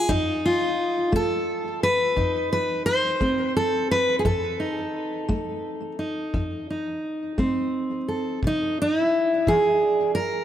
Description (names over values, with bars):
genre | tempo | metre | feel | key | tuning
acoustic country blues, solo or duo | 58 BPM (dotted quarters) | 12/8 | straight | F mixolydian | A4 = 441 Hz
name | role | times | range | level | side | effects
fingerpicked steel-string acoustic guitar | melody | 0.0-10.4 s | F2 to C5 | -22 LUFS | equal | tape echo
kick drum | drums | 0.1-9.6 s | none | -31 LUFS | equal | none
room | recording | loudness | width
wet church reverb, RT60 2.5 s | dreamy mix soaked in reverb | -21 LUFS | side -10 dB against mid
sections
0.0-10.4 A section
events
none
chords
0.1 F7; 8.4 C